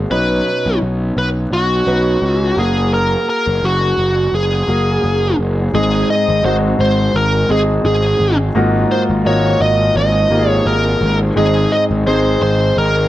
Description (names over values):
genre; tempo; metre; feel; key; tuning
piano-driven pop; 85 BPM; 4/4; swing 56% on 16ths; Ab mixolydian; A4 = 440 Hz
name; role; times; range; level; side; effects
clear concert grand piano; accompaniment; 0.0-13.1 s; Ab2 to B4; -18 LUFS; equal; none
fuzz picked electric bass; bass; 0.0-13.1 s; Gb1 to C#2; -17 LUFS; equal; overdrive
bluesy overdriven lead guitar; melody; 0.1-13.1 s; F#4 to Eb5; -16 LUFS; equal; distortion
room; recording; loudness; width
little or no reverb; dry, close 1970s-style studio recording; -12 LUFS; side -14 dB against mid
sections
0.0-5.7 A section; 5.7-13.1 B section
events
none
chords
0.1 Badd9; 2.6 Gbadd9; 5.7 Ab; 8.6 Ebmadd9/Ab; 11.4 Ab